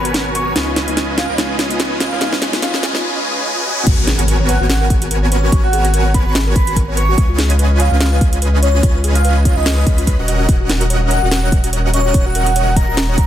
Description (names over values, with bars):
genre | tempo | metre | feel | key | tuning
future bass | 145 BPM | 4/4 | swing 56% on 16ths, half-time | G# minor | A4 = 443 Hz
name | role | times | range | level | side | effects
airy dreamy lead | melody | 0.0-13.3 s | C#5 to C#6 | -22 LUFS | right 1 dB | chorus, sidechain pumping, ping-pong delay
soft round pluck | accompaniment | 0.0-3.0 s | G#3 to F#4 | -26 LUFS | left 3 dB | lush chorus, sidechain pumping, ping-pong delay
dense compressed supersaw | riff | 0.0-13.3 s | B3 to B5 | -21 LUFS | right 1 dB | sidechain pumping, low-pass filter
saturated sub bass | bass | 0.0-13.3 s | D#1 to C#2 | -17 LUFS | equal | sidechain pumping
riser, swell and impact | sound effects | 1.3-5.5 s | none | -25 LUFS | left 1 dB | none
trap drum kit | drums | 0.1-13.3 s | crash cymbal, hi-hat, snare drum | -20 LUFS | equal | overdrive
soft round pluck | arpeggios | 3.9-13.2 s | E#4 to F#5 | -27 LUFS | left 6 dB | chorus, sidechain pumping, ping-pong delay
electronic kick drum | drums | 3.9-13.3 s | none | -14 LUFS | equal | none
room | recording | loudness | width
digital ambience | dense, heavily limited modern master, high-pass filter | -12 LUFS | side -11 dB against mid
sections
0.0-3.9 A section; 3.9-13.3 B section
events
build-up 0.0-3.9; drum fill 0.0-3.0; filter sweep 0.0-3.9; riser 1.3-3.9; swell 3.0-3.9; drop 3.9-13.3; impact 3.9-5.5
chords
0.0 G#m11; 0.6 C#9; 3.7 G#m7; 3.9 G#m11; 7.2 C#9; 10.3 D#m7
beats
0.14 | 0.56 0.97 1.39 1.80 | 2.21 2.63 3.04 3.45 | 3.87 4.28 4.70 5.11 | 5.52 5.94 6.35 6.76 | 7.18 7.59 8.01 8.42 | 8.83 9.25 9.66 10.07 | 10.49 10.90 11.32 11.73 | 12.14 12.56 12.97